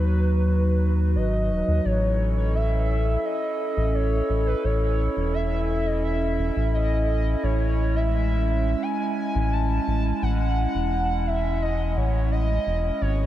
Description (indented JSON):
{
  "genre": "IDM",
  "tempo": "86 BPM",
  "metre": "4/4",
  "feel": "straight",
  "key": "A lydian",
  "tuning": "A4 = 440 Hz",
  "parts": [
    { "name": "warbly nostalgic lead", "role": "melody", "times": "0.0-13.3 s", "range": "B4 to A5", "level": "-28 LUFS", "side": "equal", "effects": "wide subtle chorus, tape echo" },
    { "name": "warbly tape-like pad", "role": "sustained chords", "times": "0.0-13.3 s", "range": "F#3 to B4", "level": "-27 LUFS", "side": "right 2 dB", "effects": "chorus, built-in reverb" },
    { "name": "round analog bass", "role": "bass", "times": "0.0-13.3 s", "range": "D#1 to D#2", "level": "-23 LUFS", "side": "equal", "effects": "tube saturation" },
    { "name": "flickering grainy texture", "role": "texture", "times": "13.1-13.3 s", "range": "G#3", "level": "-42 LUFS", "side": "left 2 dB", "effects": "none" }
  ],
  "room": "moderate huge ambient reverb, RT60 7.9 s",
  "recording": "dreamy mix soaked in reverb",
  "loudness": "-21 LUFS",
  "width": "side -13 dB against mid",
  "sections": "0.0-1.9 A section; 1.9-13.3 B section",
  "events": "none",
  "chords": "0.0 G#m7; 1.9 Amaj7"
}